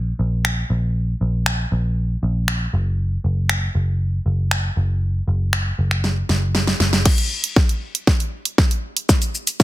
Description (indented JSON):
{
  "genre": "dance-pop",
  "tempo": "118 BPM",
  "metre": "4/4",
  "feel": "straight",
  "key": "unclear",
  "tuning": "A4 = 439 Hz",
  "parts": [
    { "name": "vintage muted picked electric bass", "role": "bass", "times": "0.0-7.0 s", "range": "Gb1 to Bb1", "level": "-19 LUFS", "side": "equal", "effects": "sidechain pumping" },
    { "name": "pop drum kit", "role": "drums", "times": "0.4-9.6 s", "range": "crash cymbal, finger snaps, hi-hat, kick drum, shaker, snare drum", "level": "-18 LUFS", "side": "equal", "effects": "soft clipping on snare" }
  ],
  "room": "digital ambience",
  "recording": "dense, heavily limited modern master",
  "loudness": "-18 LUFS",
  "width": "side -16 dB against mid",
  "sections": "0.0-7.1 A section; 7.1-9.6 B section",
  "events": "drum fill 6.0-7.1, 7.1-9.6; build-up 7.1-9.6",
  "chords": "none"
}